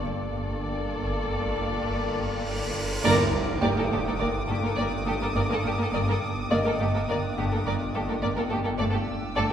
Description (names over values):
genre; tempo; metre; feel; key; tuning
cinematic, suspense film score; 104 BPM; 5/4; straight; G minor; A4 = 441 Hz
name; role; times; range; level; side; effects
muted chamber violin section; melody; 0.0-9.5 s; A4 to D5; -32 LUFS; left 3 dB; none
muted chamber violin section; second line; 0.0-9.4 s; G4 to Bb4; -32 LUFS; equal; none
mellow French horn section; sustained chords; 0.0-2.7 s; Bb3 to A4; -37 LUFS; equal; none
concert harp; riff; 0.0-9.5 s; G2 to G3; -32 LUFS; left 2 dB; none
muted chamber double bass section; bass; 0.0-9.4 s; G1; -36 LUFS; right 4 dB; none
swarming drone; drone; 0.0-9.5 s; G1; -34 LUFS; equal; built-in reverb
cymbal swell and tam-tam; percussion; 0.0-5.3 s; none; -36 LUFS; equal; none
felt-muted upright piano; texture; 0.0-9.5 s; G4 to A5; -36 LUFS; right 1 dB; none
muted chamber viola section; accompaniment; 0.1-9.5 s; A3 to Bb3; -32 LUFS; right 3 dB; none
muted chamber cello section; bass; 0.1-9.4 s; G2; -37 LUFS; right 4 dB; none
cymbal swell and sub drop; sound effects; 1.7-5.9 s; none; -35 LUFS; right 1 dB; none
timpani; percussion; 3.0-3.9 s; G2; -35 LUFS; right 2 dB; none
muted chamber violin section; texture; 3.0-9.5 s; D6 to E6; -36 LUFS; left 1 dB; none
room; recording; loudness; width
wet concert hall reverb, RT60 1.7 s; recorded in a church or concert hall; -24 LUFS; side -9 dB against mid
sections
0.0-3.0 A section; 3.0-9.5 B section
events
cymbal swell 1.7-3.0; band accent 3.0-3.6; impact 3.0-5.9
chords
0.0 Gmadd9; 8.8 Dsus4/G